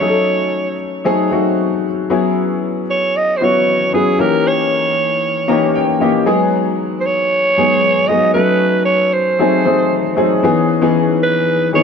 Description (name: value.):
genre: pop.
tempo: 115 BPM.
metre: 4/4.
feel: straight.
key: C# minor.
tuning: A4 = 441 Hz.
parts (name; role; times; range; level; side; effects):
growling alto saxophone; melody; 0.0-11.8 s; G#4 to D#5; -16 LUFS; right 2 dB; tape echo.
clear baby grand piano; accompaniment; 0.0-11.8 s; D#3 to A#5; -15 LUFS; left 3 dB; lush chorus.
room: moderate plate reverb, RT60 2.9 s.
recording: none.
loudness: -13 LUFS.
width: side -6 dB against mid.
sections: 0.0-2.1 A section; 2.1-10.4 B section; 10.4-11.8 C section.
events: grand piano fill 5.2-6.3.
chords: 0.0 D#m7b5; 1.1 G#7b9; 2.1 E69; 4.2 D#7b9; 6.3 G#m7; 8.3 D#m7b5; 9.4 G#7b9; 10.4 C#m9.